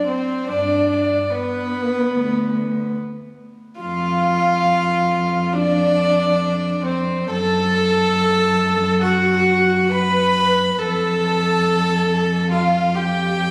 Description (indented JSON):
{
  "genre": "classical, slow romantic movement for string quartet",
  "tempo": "70 BPM",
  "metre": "4/4",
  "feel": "uneven beats, rubato",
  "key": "G major",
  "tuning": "A4 = 441 Hz",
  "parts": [
    { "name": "warm violin", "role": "melody", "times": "0.0-13.5 s", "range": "B4 to B5", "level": "-25 LUFS", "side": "equal", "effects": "none" },
    { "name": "rich violin", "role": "second line", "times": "0.0-13.5 s", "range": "B3 to B4", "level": "-25 LUFS", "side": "equal", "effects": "none" },
    { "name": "dark viola", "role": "accompaniment", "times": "0.0-13.5 s", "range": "B3 to B4", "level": "-25 LUFS", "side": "equal", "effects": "none" },
    { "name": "dark cello", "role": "bass", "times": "0.5-13.5 s", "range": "D2 to G2", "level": "-24 LUFS", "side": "equal", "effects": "none" }
  ],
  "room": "moderate concert hall reverb, RT60 2.4 s",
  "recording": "recorded on a phone in the room, club reverb, compression",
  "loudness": "-19 LUFS",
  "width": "mono",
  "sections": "0.0-13.5 A section",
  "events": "none",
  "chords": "0.5 G; 3.8 Dm/F; 7.3 F#madd11; 10.8 Fadd9"
}